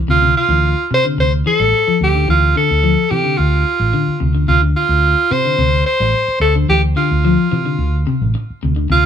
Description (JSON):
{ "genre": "afrobeat", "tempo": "109 BPM", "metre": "4/4", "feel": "straight", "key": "D minor", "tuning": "A4 = 439 Hz", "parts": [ { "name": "clean electric guitar", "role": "arpeggios", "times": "0.0-9.0 s", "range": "C3 to G3", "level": "-19 LUFS", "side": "left 5 dB", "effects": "none" }, { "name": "edgy alto saxophone", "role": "melody", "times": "0.1-9.1 s", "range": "F4 to C5", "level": "-15 LUFS", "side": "right 1 dB", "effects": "tape echo" }, { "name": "hollow-body short-scale fingered electric bass", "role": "bass", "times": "0.1-9.1 s", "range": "A1 to C3", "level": "-17 LUFS", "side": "right 1 dB", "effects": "none" } ], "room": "moderate studio reverb, RT60 0.6 s", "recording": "band playing live in one room", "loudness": "-12 LUFS", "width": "side -8 dB against mid", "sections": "0.1-9.1 A section", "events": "none", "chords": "0.1 Dm7" }